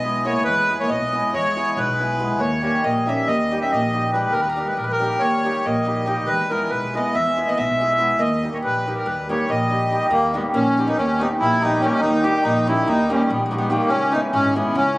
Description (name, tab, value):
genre	balkan folk, Balkan wedding band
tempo	281 BPM (eighths)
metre	9/8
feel	straight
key	Eb phrygian dominant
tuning	A4 = 440 Hz
part	accordion	melody	0.0-15.0 s	Bb3 to Fb5	-20 LUFS	equal	none
part	nylon-string guitar	second line	0.0-15.0 s	G3 to Eb4	-26 LUFS	right 1 dB	none
part	hammered dulcimer	accompaniment	0.0-15.0 s	Eb3 to G#4	-23 LUFS	equal	none
part	upright bass	bass	0.0-15.0 s	Ab1 to E2	-30 LUFS	equal	none
room	wet recital hall reverb, RT60 1.8 s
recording	recorded on a phone in the room, club reverb, compression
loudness	-18 LUFS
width	side -20 dB against mid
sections	0.0-10.1 A section; 10.1-15.0 B section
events	speeding up 0.0-15.0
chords	0.0 E; 2.4 Eb; 6.3 E; 8.2 Eb; 13.9 Dbm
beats	0.01 0.23 | 0.45 0.67 0.88 1.10 1.32 1.53 1.75 1.97 2.18 | 2.40 2.61 2.83 3.04 3.26 3.48 3.69 3.91 4.12 | 4.34 4.55 4.77 4.98 5.20 5.41 5.63 5.84 6.06 | 6.27 6.49 6.70 6.91 7.13 7.34 7.56 7.77 7.98 | 8.20 8.41 8.62 8.84 9.05 9.26 9.47 9.69 9.90 | 10.11 10.32 10.53 10.74 10.96 11.17 11.38 11.59 11.80 | 12.01 12.22 12.43 12.64 12.85 13.06 13.27 13.48 13.69 | 13.90 14.11 14.32 14.53 14.74 14.95